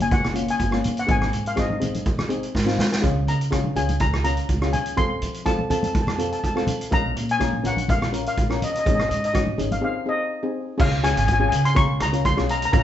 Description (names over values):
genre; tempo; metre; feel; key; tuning
calypso; 124 BPM; 4/4; straight; Db major; A4 = 438 Hz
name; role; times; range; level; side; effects
steel pan; melody; 0.0-12.8 s; Eb5 to Db6; -25 LUFS; left 3 dB; slapback echo
steel pan; accompaniment; 0.0-12.8 s; Bb3 to Bb4; -27 LUFS; left 2 dB; none
upright bass; bass; 0.0-12.8 s; Gb1 to F3; -26 LUFS; right 1 dB; none
street-band drum kit; drums; 0.0-12.8 s; crash cymbal, hi-hat, kick drum, rim click, snare drum; -24 LUFS; right 1 dB; none
congas; percussion; 0.0-9.8 s; none; -29 LUFS; left 1 dB; none
room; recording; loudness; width
moderate large studio reverb, RT60 0.9 s; band playing live in one room, nothing above 7.9 kHz; -20 LUFS; side -11 dB against mid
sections
0.0-10.8 A section; 10.8-12.8 B section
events
drum fill 2.5-3.0; break 9.8-10.8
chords
0.0 Gb; 1.1 Ab; 3.0 Db6; 5.0 F; 6.9 Bbm; 8.9 Absus4; 9.8 Ab; 10.8 Db